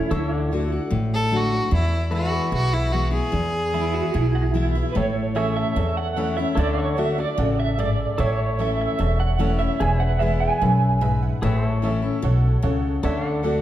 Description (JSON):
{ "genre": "country", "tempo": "148 BPM", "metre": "4/4", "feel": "straight", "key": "A major", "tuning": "A4 = 442 Hz", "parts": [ { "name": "electric guitar through a small old amp", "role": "second line", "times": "0.0-0.9, 3.7-11.2 s", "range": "E4 to G#5", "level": "-26 LUFS", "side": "right 6 dB", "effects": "tremolo, tape echo" }, { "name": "picked steel-string acoustic guitar", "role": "accompaniment", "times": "0.0-13.6 s", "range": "E2 to F#4", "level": "-25 LUFS", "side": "left 3 dB", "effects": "none" }, { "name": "pedal steel guitar", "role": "sustained chords", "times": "0.0-13.6 s", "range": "G#4 to F#5", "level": "-32 LUFS", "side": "left 2 dB", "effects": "none" }, { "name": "upright bass", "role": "bass", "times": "0.1-13.6 s", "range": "E1 to E2", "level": "-23 LUFS", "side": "equal", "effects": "none" }, { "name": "clear fiddle", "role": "melody", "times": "1.1-4.5 s", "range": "E4 to A4", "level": "-25 LUFS", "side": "equal", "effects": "none" }, { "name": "tack piano", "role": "accompaniment", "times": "5.0-13.6 s", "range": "G#4 to B5", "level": "-31 LUFS", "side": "right 5 dB", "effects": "none" } ], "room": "moderate recital hall reverb, RT60 1.8 s", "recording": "dark, warm production", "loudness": "-19 LUFS", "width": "side -12 dB against mid", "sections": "0.0-5.0 A section; 5.0-13.6 A section", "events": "clean electric guitar solo 5.0-13.6; honky-tonk piano fill 10.8-11.4", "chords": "0.1 D; 1.7 E; 5.0 A; 6.6 D; 8.2 A; 9.8 E; 11.4 A; 13.0 D", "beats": "| 0.10 0.51 0.91 1.32 | 1.72 2.12 2.53 2.93 | 3.34 3.74 4.14 4.55 | 4.95 5.36 5.76 6.17 | 6.57 6.97 7.38 7.78 | 8.19 8.59 8.99 9.40 | 9.80 10.21 10.61 11.02 | 11.42 11.83 12.23 12.64 | 13.04 13.45" }